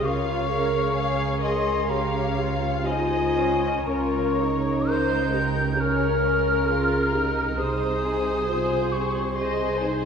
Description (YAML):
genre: classical, slow romantic movement for symphony orchestra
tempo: 56-68 BPM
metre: 4/4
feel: rubato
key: Ab major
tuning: A4 = 440 Hz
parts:
  - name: silver concert flute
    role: second line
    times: 0.0-10.0 s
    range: Ab5 to G6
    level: -28 LUFS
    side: left 1 dB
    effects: none
  - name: muted studio viola section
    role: accompaniment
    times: 0.0-10.1 s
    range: Db4 to Bb4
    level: -30 LUFS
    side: right 2 dB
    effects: none
  - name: dark French horn section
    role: sustained chords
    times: 0.0-10.1 s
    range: Eb4 to Bb4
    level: -27 LUFS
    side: left 3 dB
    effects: none
  - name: muted studio cello section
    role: bass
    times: 0.0-10.1 s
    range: C3 to Db3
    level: -29 LUFS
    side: right 3 dB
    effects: none
  - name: muted studio double bass section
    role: bass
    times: 0.0-10.1 s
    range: C2 to Db2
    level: -31 LUFS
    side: right 3 dB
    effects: none
  - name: muted studio violin section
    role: melody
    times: 0.1-10.1 s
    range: Bb4 to F5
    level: -31 LUFS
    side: left 2 dB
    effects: none
  - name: muted studio violin section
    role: second line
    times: 0.1-10.1 s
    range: Ab4 to Eb5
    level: -33 LUFS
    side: left 3 dB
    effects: none
room: wet scoring stage reverb, RT60 1.6 s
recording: heard from further back in the room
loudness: -21 LUFS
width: side -6 dB against mid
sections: 0.0-10.1 A section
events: none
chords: 0.0 Dbmaj7; 7.6 Ab/C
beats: | 0.05 0.95 1.90 2.85 | 3.88 4.88 5.78 6.68 | 7.58 8.47 9.36